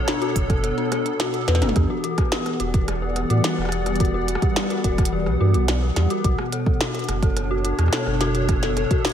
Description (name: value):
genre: IDM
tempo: 107 BPM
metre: 4/4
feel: straight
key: E dorian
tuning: A4 = 441 Hz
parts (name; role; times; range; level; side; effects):
- hollow soft pad; sustained chords; 0.0-9.1 s; B2 to F#5; -26 LUFS; equal; ensemble chorus
- dark detuned synth bell; arpeggios; 0.0-9.1 s; D4 to B4; -26 LUFS; left 4 dB; chorus, phaser, ping-pong delay
- glitchy drum kit; drums; 0.1-9.1 s; hi-hat, rim click, snare drum, toms; -27 LUFS; right 1 dB; overdrive, tape echo
- warm sub bass; bass; 0.4-8.9 s; E1 to A2; -23 LUFS; right 1 dB; none
- electronic kick drum; drums; 0.4-9.0 s; none; -22 LUFS; equal; none
room: light reverb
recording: none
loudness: -19 LUFS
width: side -9 dB against mid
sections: 0.0-9.1 A section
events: kick drops out 0.6-1.8; drum fill 1.5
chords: 0.0 Bm9; 1.8 Em9; 6.2 Bm9